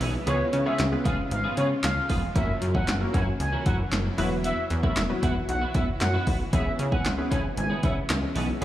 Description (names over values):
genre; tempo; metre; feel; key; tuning
dance-pop; 115 BPM; 4/4; straight; C# dorian; A4 = 440 Hz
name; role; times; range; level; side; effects
shimmering ambient pad; sustained chords; 0.0-8.6 s; B2 to F#4; -36 LUFS; left 1 dB; chorus, built-in reverb, sidechain pumping
twelve-string electric guitar; riff; 0.0-8.6 s; E3 to G#4; -34 LUFS; right 3 dB; analog chorus, slapback echo
plucky analog bass; bass; 0.0-8.6 s; E1 to C#3; -28 LUFS; equal; sidechain pumping
punchy analog drum machine; drums; 0.0-8.6 s; handclaps, hi-hat, kick drum, snare drum; -27 LUFS; equal; overdrive
expressive synth lead; melody; 0.3-8.6 s; C#5 to G#5; -31 LUFS; equal; chorus, slapback echo, ping-pong delay
glassy wavetable pluck; accompaniment; 0.3-8.6 s; F#3 to C#5; -32 LUFS; left 1 dB; chorus, sidechain pumping, slapback echo
room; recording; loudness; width
light reverb, digital ambience; live gig heard through the venue's PA, club ambience; -23 LUFS; side -13 dB against mid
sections
0.0-8.6 A section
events
none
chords
0.3 C#7; 2.4 F#7; 4.2 Esus2; 6.5 C#m7